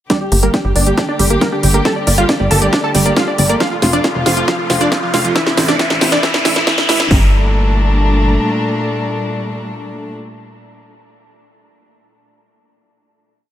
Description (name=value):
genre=uplifting trance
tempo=137 BPM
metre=4/4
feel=straight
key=G dorian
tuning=A4 = 440 Hz
part: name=supersaw stab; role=melody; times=0.1-10.1 s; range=Bb3 to Bb5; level=-19 LUFS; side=equal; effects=sidechain pumping, low-pass filter, tape echo
part: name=warm chamber string section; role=sustained chords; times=0.1-10.1 s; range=Bb2 to G4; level=-21 LUFS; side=left 1 dB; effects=sidechain pumping
part: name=analog pluck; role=arpeggios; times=0.1-7.3 s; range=E3 to F4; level=-21 LUFS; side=right 3 dB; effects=chorus, sidechain pumping, tape echo
part: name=techno drum kit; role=drums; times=0.1-7.2 s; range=hi-hat, kick drum, snare drum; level=-17 LUFS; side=equal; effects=overdrive, high-pass filter on kick, high-pass filter on snare, high-pass filter on hats
part: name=techno drum kit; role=drums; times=0.1-7.1 s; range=hi-hat, snare drum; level=-18 LUFS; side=equal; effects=overdrive, high-pass filter on snare, high-pass filter on hats
part: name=riser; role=sound effects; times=2.2-7.1 s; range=none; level=-22 LUFS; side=equal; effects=none
part: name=tight sequencer bass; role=bass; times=0.3-8.4 s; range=F1 to A1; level=-16 LUFS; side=equal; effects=sidechain pumping
room=light reverb, digital ambience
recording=high-pass filter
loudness=-12 LUFS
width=side -11 dB against mid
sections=0.1-7.1 build; 7.1-10.6 final chord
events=build-up 0.1-7.1; drum fill 0.1-7.1; filter sweep on supersaw synth 0.1-7.1; filter sweep 0.1-7.1; riser 2.2-7.1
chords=0.1 Gmadd9; 3.6 F; 5.4 Am; 7.1 Gmadd9